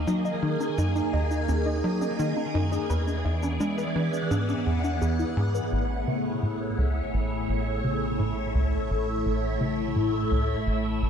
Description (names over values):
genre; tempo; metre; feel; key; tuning
ambient, sequencer-driven space music; 85 BPM; 4/4; straight; E lydian, A major from 5.7 s; A4 = 436 Hz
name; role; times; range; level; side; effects
phased string machine; sustained chords; 0.0-11.1 s; A2 to G#5; -28 LUFS; equal; ensemble chorus, phaser
tight sequencer bass; riff; 0.0-11.1 s; A1 to G#3; -27 LUFS; equal; lush chorus, tape echo
warbly dusty pluck; arpeggios; 0.1-11.1 s; A3 to A#5; -34 LUFS; moving between left 8 dB and right 2 dB; chorus, auto-pan, tape echo
shaker and congas; percussion; 0.1-5.7 s; none; -40 LUFS; right 4 dB; overdrive, tape echo
analog drone; bass; 6.8-11.1 s; A1; -34 LUFS; equal; chorus
room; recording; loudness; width
moderate plate reverb, RT60 2.9 s; dark, warm production; -24 LUFS; side -7 dB against mid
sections
0.0-5.7 A section; 5.7-11.1 B section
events
filter sweep on analog synth bass 5.7-11.1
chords
0.0 D#m; 2.9 E7; 5.7 A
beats
| 0.08 0.78 1.49 2.19 | 2.90 3.61 4.31 5.02 | 5.72 6.43 7.13 7.84 | 8.55 9.25 9.96 10.66